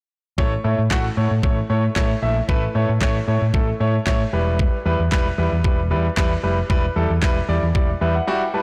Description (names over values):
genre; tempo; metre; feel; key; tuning
dance-pop; 114 BPM; 4/4; straight; unclear; A4 = 442 Hz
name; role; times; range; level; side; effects
clear concert grand piano; accompaniment; 0.4-8.6 s; G3 to A5; -25 LUFS; equal; sidechain pumping
fingered electric bass; bass; 0.4-8.2 s; E1 to A2; -23 LUFS; equal; sidechain pumping
pop drum kit; drums; 0.4-7.9 s; handclaps, kick drum, snare drum; -24 LUFS; equal; none
room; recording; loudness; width
light reverb; blown-out, overdriven recording, overdrive; -20 LUFS; mono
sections
0.4-8.6 A section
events
grand piano fill 7.8-8.6; drums muted 8.3-8.6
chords
0.4 A; 4.3 Em